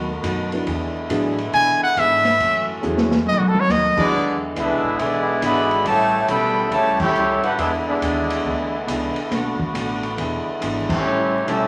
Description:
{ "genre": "jazz, big band swing", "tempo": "139 BPM", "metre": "4/4", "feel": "swing 65% on 8ths", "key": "E mixolydian, E major from 4.1 s", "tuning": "A4 = 438 Hz", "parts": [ { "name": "vintage hollow-body jazz guitar", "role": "accompaniment", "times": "0.0-11.7 s", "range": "F#2 to G#4", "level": "-30 LUFS", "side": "equal", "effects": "none" }, { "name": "bright trombone section", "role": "sustained chords", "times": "0.0-11.7 s", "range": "C#3 to G4", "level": "-30 LUFS", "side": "equal", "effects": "none" }, { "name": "upright bass", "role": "bass", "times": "0.0-11.7 s", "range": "E1 to B2", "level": "-35 LUFS", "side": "equal", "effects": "none" }, { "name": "open jazz drum kit", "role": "drums", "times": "0.2-11.6 s", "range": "crash cymbal, hi-hat, kick drum, ride cymbal, snare drum, toms", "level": "-28 LUFS", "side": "equal", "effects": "none" }, { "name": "dark concert grand piano", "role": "accompaniment", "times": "0.5-4.1 s", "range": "F#3 to B4", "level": "-28 LUFS", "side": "equal", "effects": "none" }, { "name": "bright trumpet", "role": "melody", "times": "1.5-4.1 s", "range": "F#4 to G#5", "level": "-19 LUFS", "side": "equal", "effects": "none" }, { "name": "warm trumpet section", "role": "melody", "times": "4.0-11.7 s", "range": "A3 to B5", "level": "-22 LUFS", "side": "equal", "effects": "none" }, { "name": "brilliant trombone section", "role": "second line", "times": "4.0-11.7 s", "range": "B2 to G4", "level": "-27 LUFS", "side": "equal", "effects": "none" } ], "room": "wet large studio reverb, RT60 1.1 s", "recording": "vinyl crackle", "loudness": "-20 LUFS", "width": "mono", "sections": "0.0-4.1 A section; 4.1-11.7 B section", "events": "trumpet solo 0.0-4.1; drum fill 2.8-3.7; band accent 6.9, 10.8", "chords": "0.0 B7; 0.7 E7; 2.4 F#m7; 3.3 B7; 4.1 E7; 5.9 A7; 7.6 E7; 9.3 Bm7; 10.2 E7; 11.0 A7", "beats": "0.24 | 0.67 1.10 1.53 1.97 | 2.40 2.83 3.26 3.69 | 4.13 4.56 4.99 5.42 | 5.86 6.29 6.72 7.15 | 7.59 8.02 8.45 8.88 | 9.32 9.75 10.18 10.61 | 11.04 11.48" }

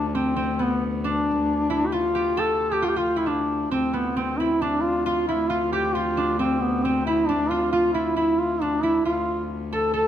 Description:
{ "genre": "medieval", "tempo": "135 BPM", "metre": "3/4", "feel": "straight", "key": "D dorian", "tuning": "A4 = 440 Hz", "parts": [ { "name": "mellow duduk", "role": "melody", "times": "0.0-10.1 s", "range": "B3 to A4", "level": "-23 LUFS", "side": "equal", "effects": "slapback echo" }, { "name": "concert harp", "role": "second line", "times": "0.0-10.1 s", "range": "B3 to A4", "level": "-27 LUFS", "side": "right 2 dB", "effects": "none" }, { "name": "dark viola da gamba", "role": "drone", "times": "0.0-10.1 s", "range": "D2", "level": "-30 LUFS", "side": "left 2 dB", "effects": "none" } ], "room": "moderate recital hall reverb, RT60 1.6 s", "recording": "none", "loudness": "-21 LUFS", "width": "side -10 dB against mid", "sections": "0.0-3.7 A section; 3.7-10.1 B section", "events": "none", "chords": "none", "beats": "0.14 0.59 | 1.04 1.49 1.94 | 2.38 2.83 3.28 | 3.73 4.17 4.62 | 5.06 5.51 5.95 | 6.40 6.84 7.29 | 7.73 8.17 8.62 | 9.06 9.50 9.94" }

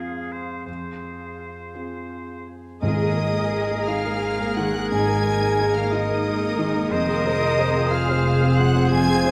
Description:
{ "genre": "cinematic, emotional film score for orchestra", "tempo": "55-61 BPM (dotted quarters)", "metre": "6/8", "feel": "rubato", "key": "Ab mixolydian", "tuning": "A4 = 439 Hz", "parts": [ { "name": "bright oboe", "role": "second line", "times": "0.0-9.3 s", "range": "Ab4 to C5", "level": "-34 LUFS", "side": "equal", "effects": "none" }, { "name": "clear clarinet", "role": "second line", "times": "0.0-9.3 s", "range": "Ab4", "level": "-36 LUFS", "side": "equal", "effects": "none" }, { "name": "silver concert flute", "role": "second line", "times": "0.0-9.3 s", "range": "Eb5 to Ab5", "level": "-31 LUFS", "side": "equal", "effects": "none" }, { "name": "felt-muted upright piano", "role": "accompaniment", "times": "0.0-9.3 s", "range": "F2 to C5", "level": "-30 LUFS", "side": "equal", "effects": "none" }, { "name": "concert harp", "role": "arpeggios", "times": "0.0-9.3 s", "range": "F2 to C5", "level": "-33 LUFS", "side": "equal", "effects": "none" }, { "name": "warm symphonic violin section", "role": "melody", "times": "2.8-9.3 s", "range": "Eb6 to Ab6", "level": "-35 LUFS", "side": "equal", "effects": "none" }, { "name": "rich symphonic violin section", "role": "second line", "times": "2.8-9.3 s", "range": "Eb5 to Ab5", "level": "-37 LUFS", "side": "equal", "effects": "none" }, { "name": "warm symphonic viola section", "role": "accompaniment", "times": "2.8-9.3 s", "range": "Ab3 to Bb4", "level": "-33 LUFS", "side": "equal", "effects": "none" }, { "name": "dark French horn section", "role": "sustained chords", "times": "2.8-9.3 s", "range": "Bb3 to Ab4", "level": "-31 LUFS", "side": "equal", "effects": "none" }, { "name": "rich studio cello section", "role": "bass", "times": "2.8-9.3 s", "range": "Eb4 to Bb4", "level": "-32 LUFS", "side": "equal", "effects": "none" }, { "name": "warm symphonic double bass section", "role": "bass", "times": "2.8-9.3 s", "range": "F1 to Ab1", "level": "-28 LUFS", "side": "equal", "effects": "none" }, { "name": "timpani", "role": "percussion", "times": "2.8-3.8 s", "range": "Ab2", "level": "-30 LUFS", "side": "equal", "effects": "none" } ], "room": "wet scoring stage reverb, RT60 1.7 s", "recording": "none", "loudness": "-22 LUFS", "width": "mono", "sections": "0.0-2.8 A section; 2.8-9.3 B section", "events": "none", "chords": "0.0 Fm; 2.8 Absus2; 6.9 Fm", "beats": "| 0.68 1.75 | 2.83 3.89 | 4.92 5.93 | 6.92 7.92 | 8.92" }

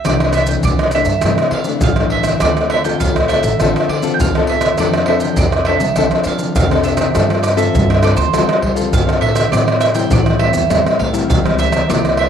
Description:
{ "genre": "samba and choro", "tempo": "101 BPM", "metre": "4/4", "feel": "straight", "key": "C major", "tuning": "A4 = 441 Hz", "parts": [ { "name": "bowl-back mandolin", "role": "melody", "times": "0.0-12.2 s", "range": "C5 to G5", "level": "-21 LUFS", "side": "right 9 dB", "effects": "none" }, { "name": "maracas, surdo, pandeiro and tamborim", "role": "percussion", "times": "0.0-12.3 s", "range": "none", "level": "-15 LUFS", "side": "right 1 dB", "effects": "none" }, { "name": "nylon-string guitar", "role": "accompaniment", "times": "0.1-12.3 s", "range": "G2 to A4", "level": "-19 LUFS", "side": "left 9 dB", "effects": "none" }, { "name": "upright bass", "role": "bass", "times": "0.1-12.3 s", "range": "A1 to A3", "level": "-20 LUFS", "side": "right 1 dB", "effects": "none" } ], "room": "moderate echo chamber reverb, RT60 1.9 s, studio reverb", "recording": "1960s-style stereo with parts hard left and right", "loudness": "-12 LUFS", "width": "side -8 dB against mid", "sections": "0.1-12.3 A section", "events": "none", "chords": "0.1 C69; 2.4 Dm7; 4.8 F6; 7.2 G9sus4; 9.5 Am7", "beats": "| 0.06 0.65 1.24 1.83 | 2.42 3.02 3.61 4.20 | 4.79 5.38 5.97 6.57 | 7.16 7.75 8.34 8.93 | 9.53 10.12 10.71 11.30 | 11.89" }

